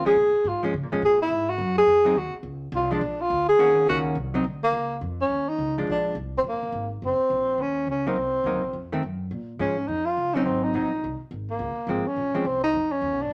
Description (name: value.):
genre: jazz, small-group swing and bop.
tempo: 210 BPM.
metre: 4/4.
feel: swing 62% on 8ths.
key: Db major.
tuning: A4 = 440 Hz.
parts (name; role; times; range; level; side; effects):
breathy tenor saxophone; melody; 0.0-13.3 s; Bb3 to Ab4; -25 LUFS; equal; none.
hollow-body jazz guitar; accompaniment; 0.0-12.4 s; Eb3 to Gb4; -29 LUFS; equal; none.
upright bass; bass; 0.0-13.3 s; F1 to Db3; -36 LUFS; equal; none.
room: moderate studio reverb, RT60 0.8 s.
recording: none.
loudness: -25 LUFS.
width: mono.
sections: 0.0-4.7 A section; 4.7-13.3 B section.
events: tenor saxophone solo 0.0-4.7.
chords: 0.2 Bbm7; 1.3 Ab7(no3); 2.4 Dbmaj7; 3.0 Bb; 3.6 Ebm7; 4.2 Cdim; 4.7 Db; 5.9 Bb7; 7.0 Ebm7; 8.2 Cm7b5; 8.7 F7; 9.3 Bbm7; 10.4 Ab7; 11.6 Dbmaj7; 12.7 Fm7b5.